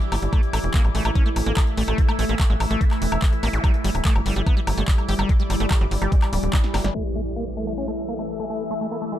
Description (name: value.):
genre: psychedelic trance.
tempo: 145 BPM.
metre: 4/4.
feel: straight.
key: unclear.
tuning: A4 = 440 Hz.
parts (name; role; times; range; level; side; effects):
overtone-sweeping drone; sustained chords; 0.0-9.2 s; E3 to E4; -31 LUFS; equal; chorus, built-in reverb, phaser, sidechain pumping.
techno drum kit; drums; 0.0-7.0 s; crash cymbal, handclaps, hi-hat, snare drum, woodblock; -29 LUFS; left 1 dB; overdrive, low-pass filter on hats, studio ambience, low-pass filter on cymbals, low-pass filter on perc, low-pass filter on snare.
ethereal airy pad; texture; 0.0-9.2 s; G3 to E6; -30 LUFS; equal; ensemble chorus, built-in reverb, sidechain pumping.
liquid acid bass; riff; 0.1-9.2 s; F#3 to G4; -30 LUFS; equal; chorus, auto-pan, sidechain pumping, tape echo.
tight sequencer bass; bass; 0.1-6.9 s; D1 to A1; -23 LUFS; equal; none.
electronic kick drum; drums; 0.3-6.6 s; none; -19 LUFS; equal; studio ambience.
resonant blip pluck; second line; 1.9-5.8 s; E3 to A3; -40 LUFS; right 4 dB; none.
zap and impact; sound effects; 3.5-3.6, 6.9-8.6 s; none; -32 LUFS; equal; none.
room: little or no reverb.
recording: low-pass filter.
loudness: -19 LUFS.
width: side -12 dB against mid.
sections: 0.0-6.9 A section; 6.9-9.2 B section.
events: drum fill 6.5-6.9; impact 6.9-8.6; filter sweep 6.9-9.2.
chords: 0.3 A5; 3.6 G5; 6.9 A5.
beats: | 0.33 0.74 1.15 1.57 | 1.98 2.40 2.81 3.22 | 3.64 4.05 4.46 4.88 | 5.29 5.71 6.12 6.53 | 6.95 7.36 7.78 8.19 | 8.60 9.02.